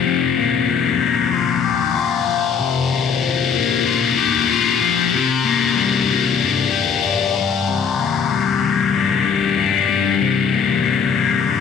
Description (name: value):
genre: rock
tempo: 95 BPM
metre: 4/4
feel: straight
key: unclear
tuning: A4 = 440 Hz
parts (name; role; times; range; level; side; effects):
- thick fuzz guitar; solo; 0.0-11.6 s; C3 to G4; -16 LUFS; left 6 dB; distortion, phaser
room: moderate plate reverb, RT60 2.4 s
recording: none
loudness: -16 LUFS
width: side -5 dB against mid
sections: 0.0-11.6 A section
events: none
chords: 0.0 C7sus4; 5.1 Gm/C